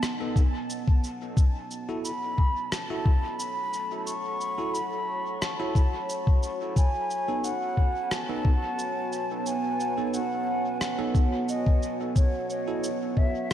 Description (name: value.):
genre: ambient dub.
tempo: 89 BPM.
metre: 4/4.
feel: swing 54% on 16ths.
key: B mixolydian.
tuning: A4 = 436 Hz.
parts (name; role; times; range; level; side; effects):
breathy mellow concert flute; melody; 0.0-13.5 s; C#5 to C#6; -31 LUFS; equal; dub echo.
deep dark ambient pad; sustained chords; 0.0-13.5 s; B3 to F#5; -33 LUFS; right 1 dB; chorus, built-in reverb.
electronic rim click and cabasa; drums; 0.0-13.5 s; none; -35 LUFS; equal; dub echo.
barky tine electric piano; stabs; 0.2-12.9 s; B3 to A4; -37 LUFS; right 2 dB; medium stereo tremolo, dub echo.
electronic kick drum; drums; 0.4-13.3 s; none; -21 LUFS; left 1 dB; none.
room: moderate lush hall reverb, RT60 2.6 s.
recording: dreamy mix soaked in reverb.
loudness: -25 LUFS.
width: side -11 dB against mid.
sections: 0.0-13.5 A section.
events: none.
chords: 0.0 B7; 1.4 F#m7; 6.8 B7; 12.2 F#m7.